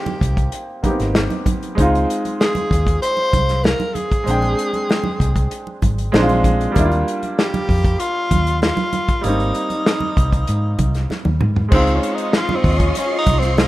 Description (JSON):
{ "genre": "lush 1970s-style soul", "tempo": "96 BPM", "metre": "4/4", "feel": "straight", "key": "unclear", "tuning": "A4 = 440 Hz", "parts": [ { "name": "breathy tenor saxophone", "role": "melody", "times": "0.0-13.7 s", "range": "C4 to C5", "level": "-22 LUFS", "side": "equal", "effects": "none" }, { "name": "clear concert grand piano", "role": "accompaniment", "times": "0.0-13.7 s", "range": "G3 to G5", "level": "-22 LUFS", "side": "equal", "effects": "none" }, { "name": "warm soul drum kit", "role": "drums", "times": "0.1-13.7 s", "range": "crash cymbal, hi-hat, kick drum, snare drum, toms", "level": "-19 LUFS", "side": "equal", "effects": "none" }, { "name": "congas", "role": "percussion", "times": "0.1-13.7 s", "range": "none", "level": "-27 LUFS", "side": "right 4 dB", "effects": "none" }, { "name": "vintage muted fingered electric bass", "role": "bass", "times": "0.2-13.7 s", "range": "Ab1 to Ab2", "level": "-19 LUFS", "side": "equal", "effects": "none" }, { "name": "string machine, violins", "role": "sustained chords", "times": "11.7-13.7 s", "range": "F4 to Db6", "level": "-24 LUFS", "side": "equal", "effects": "ensemble chorus" } ], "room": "studio reverb", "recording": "rough home demo mix", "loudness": "-15 LUFS", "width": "side -16 dB against mid", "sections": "0.0-11.7 A section; 11.7-13.7 B section", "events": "drum fill 11.1-11.7; tenor saxophone solo 11.7-13.7", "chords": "0.0 Abmaj7; 1.8 Dbmaj9 (rootless); 4.3 Bb13; 6.1 Bb7; 6.8 Ebmaj7; 9.2 Abmaj7; 11.7 Dbmaj9" }